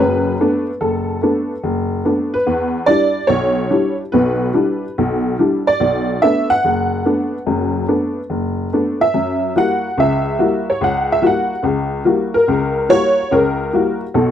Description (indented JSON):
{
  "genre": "solo jazz",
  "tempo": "144 BPM",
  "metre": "4/4",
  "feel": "swing 67% on 8ths",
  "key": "unclear",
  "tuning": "A4 = 439 Hz",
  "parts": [
    { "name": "honky-tonk upright piano", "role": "solo", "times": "0.0-14.3 s", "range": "F#1 to F#5", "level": "-14 LUFS", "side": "equal", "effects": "none" }
  ],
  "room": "little or no reverb",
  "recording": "dry, close 1970s-style studio recording",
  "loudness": "-14 LUFS",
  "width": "side -10 dB against mid",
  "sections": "0.0-14.3 A section",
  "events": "none",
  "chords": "0.0 Bm7; 2.5 Em7; 5.8 Bm7; 9.1 F#7b9"
}